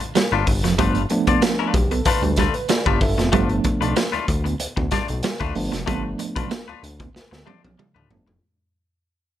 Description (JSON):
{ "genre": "funk", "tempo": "94 BPM", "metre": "4/4", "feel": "straight", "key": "G mixolydian", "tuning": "A4 = 443 Hz", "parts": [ { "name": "twangy electric guitar", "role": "accompaniment", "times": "0.0-8.3 s", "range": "A3 to D5", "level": "-26 LUFS", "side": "left 9 dB", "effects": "lush chorus" }, { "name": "raw garage drum kit", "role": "drums", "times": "0.0-8.4 s", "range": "hi-hat, kick drum, snare drum, toms", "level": "-23 LUFS", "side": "equal", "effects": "none" }, { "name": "clean electric guitar", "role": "riff", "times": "0.2-8.4 s", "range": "F3 to B3", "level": "-26 LUFS", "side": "right 8 dB", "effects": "tremolo" }, { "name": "fat analog bass", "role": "bass", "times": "0.3-8.4 s", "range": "F1 to D2", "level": "-25 LUFS", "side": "left 1 dB", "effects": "none" }, { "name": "mellow tine electric piano", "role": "stabs", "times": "0.8-8.3 s", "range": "F3 to E5", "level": "-24 LUFS", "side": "right 3 dB", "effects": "medium stereo tremolo" } ], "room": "light reverb, small room ambience", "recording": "none", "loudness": "-18 LUFS", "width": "side -12 dB against mid", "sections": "0.0-3.3 A section; 3.3-8.4 B section", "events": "tine electric piano fill 1.4-3.3; fade-out 3.3-8.4; drum fill 7.1-8.4", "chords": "0.0 G9" }